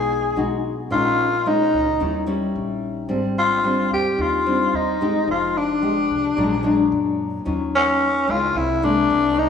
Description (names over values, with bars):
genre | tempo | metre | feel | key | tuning
bossa nova | 110 BPM | 4/4 | straight | unclear | A4 = 440 Hz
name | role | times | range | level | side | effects
growling tenor saxophone | melody | 0.0-9.5 s | Db4 to G#4 | -19 LUFS | left 2 dB | none
nylon-string guitar | accompaniment | 0.0-9.5 s | Ab2 to G4 | -22 LUFS | left 2 dB | none
upright bass | bass | 0.0-9.5 s | F1 to F#2 | -32 LUFS | equal | none
room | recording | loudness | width
wet lush hall reverb, RT60 2.2 s | rough home demo mix, small room ambience | -18 LUFS | side -7 dB against mid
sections
0.0-9.5 A section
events
none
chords
0.0 Emaj9 (rootless); 0.9 Bbm7; 2.0 Eb7b9; 3.1 Abmaj7#11; 5.3 Fm9; 6.4 Bbaug7; 7.5 Ebm9; 8.6 C7b13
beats
0.36 | 0.91 1.45 2.00 2.54 | 3.09 3.64 4.18 4.73 | 5.27 5.82 6.37 6.91 | 7.46 8.00 8.55 9.10